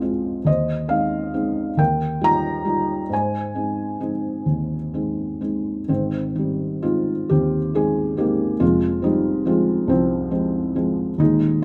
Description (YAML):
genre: classical, lyrical solo piano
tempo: 42-47 BPM (dotted quarters)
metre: 6/8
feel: rubato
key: Ab major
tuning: A4 = 439 Hz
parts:
  - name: felt-muted upright piano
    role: solo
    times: 0.0-11.6 s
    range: Eb1 to Bb5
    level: -22 LUFS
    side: equal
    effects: none
room: light reverb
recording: close, detailed microphones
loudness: -22 LUFS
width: mono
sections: 0.0-5.9 A section; 5.9-11.6 A section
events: none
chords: 0.5 Ab/Eb; 1.8 Ebadd9; 3.1 Ab; 8.6 Fm